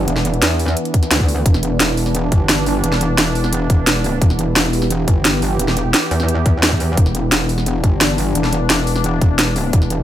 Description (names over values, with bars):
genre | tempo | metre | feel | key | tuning
dark technical drum and bass | 174 BPM | 4/4 | straight | E minor | A4 = 436 Hz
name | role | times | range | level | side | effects
sweeping resonant pad | sustained chords | 0.0-10.0 s | E3 to G4 | -21 LUFS | right 1 dB | chorus, sidechain pumping
metallic wobble bass | bass | 0.0-10.0 s | E1 to E2 | -19 LUFS | equal | chorus, sidechain pumping
drum and bass drum kit | drums | 0.1-10.0 s | hi-hat, snare drum | -18 LUFS | equal | overdrive
electronic kick drum | drums | 0.9-9.8 s | none | -14 LUFS | equal | none
room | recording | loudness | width
light reverb | none | -14 LUFS | side -12 dB against mid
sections
0.0-10.0 A section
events
none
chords
0.0 E5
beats
| 0.08 0.42 0.77 1.11 | 1.46 1.80 2.15 2.49 | 2.84 3.18 3.53 3.87 | 4.21 4.56 4.91 5.25 | 5.59 5.94 6.28 6.63 | 6.97 7.32 7.66 8.01 | 8.35 8.70 9.04 9.39 | 9.73